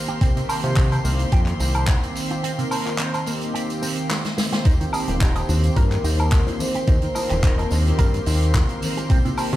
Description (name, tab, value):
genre	nu-disco, nu disco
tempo	108 BPM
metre	4/4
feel	swing 54% on 16ths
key	Eb major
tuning	A4 = 440 Hz
part	warm analog pad	accompaniment	0.0-9.6 s	Eb3 to C5	-27 LUFS	right 1 dB	lush chorus, sidechain pumping
part	dark chamber string section	sustained chords	0.0-9.6 s	C5 to C6	-35 LUFS	left 1 dB	sidechain pumping
part	electric guitar with an envelope filter	riff	0.1-9.6 s	C3 to Eb5	-30 LUFS	right 2 dB	analog chorus, vintage 12-bit sampler grit
part	open jazz drum kit	drums	0.1-9.6 s	handclaps, hi-hat, snare drum, tambourine, woodblock	-27 LUFS	equal	none
part	fat analog bass	bass	0.2-9.6 s	Eb1 to C3	-21 LUFS	equal	tube saturation
part	electronic kick drum	drums	0.2-9.2 s	none	-18 LUFS	equal	none
part	tambourine, bongos and congas	percussion	4.7-9.6 s	none	-32 LUFS	left 2 dB	none
part	vibraphone with medium mallets	melody	5.2-8.8 s	G4 to C5	-31 LUFS	left 1 dB	dub echo
room	studio reverb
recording	played on a big sound system in a bare room, stone room reverb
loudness	-18 LUFS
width	side -14 dB against mid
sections	0.0-9.6 A section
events	break 2.4-4.7; drum fill 4.1-4.7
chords	0.2 Cm7; 4.7 Eb6